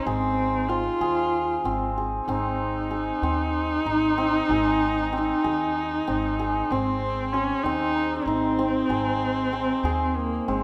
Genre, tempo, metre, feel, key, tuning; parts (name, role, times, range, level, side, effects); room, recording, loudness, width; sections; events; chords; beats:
contemporary instrumental, chamber music in an uneven meter; 190 BPM (eighths); 7/8; straight; Ab major; A4 = 440 Hz
dark viola; second line; 0.0-10.6 s; Ab3 to F4; -28 LUFS; equal
hammered dulcimer; arpeggios; 0.0-10.6 s; C4 to C5; -28 LUFS; equal
upright bass; bass; 0.1-10.6 s; Ab1 to Eb2; -34 LUFS; equal
celesta; texture; 2.3-3.4, 7.3-10.6 s; Bb5 to C6; -37 LUFS; equal
moderate recital hall reverb, RT60 1.7 s; -25 LUFS; mono
0.0-10.6 A section
0.0 Ab
| 0.07 0.38 0.70 1.01 1.33 1.65 1.97 | 2.29 2.61 2.92 3.24 3.56 3.88 4.19 | 4.51 4.82 5.14 5.46 5.77 6.08 6.40 | 6.71 7.02 7.33 7.65 7.96 8.27 8.59 | 8.90 9.21 9.53 9.85 10.16 10.48